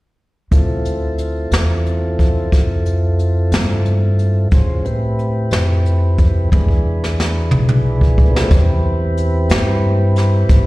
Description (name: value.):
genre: slow blues.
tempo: 60 BPM (dotted quarters).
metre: 12/8.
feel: straight.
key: A minor.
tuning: A4 = 440 Hz.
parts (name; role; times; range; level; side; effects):
mellow tonewheel organ; sustained chords; 0.5-10.7 s; A3 to D5; -22 LUFS; equal; slow rotary speaker.
upright bass; bass; 0.5-10.7 s; B1 to A2; -16 LUFS; equal; none.
jazz brush drum kit; drums; 0.5-10.7 s; hi-hat, kick drum, snare drum, toms; -15 LUFS; equal; none.
room: little or no reverb.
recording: live gig heard through the venue's PA, recital hall reverb.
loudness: -13 LUFS.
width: side -20 dB against mid.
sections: 0.5-8.5 A section; 8.5-10.7 B section.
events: drum fill 6.5-8.5.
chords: 0.5 Dm7; 4.5 Am7; 6.5 E7; 8.5 Am7 (rootless).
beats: | 0.52 1.52 2.52 3.52 | 4.52 5.52 6.52 7.52 | 8.51 9.51 10.50.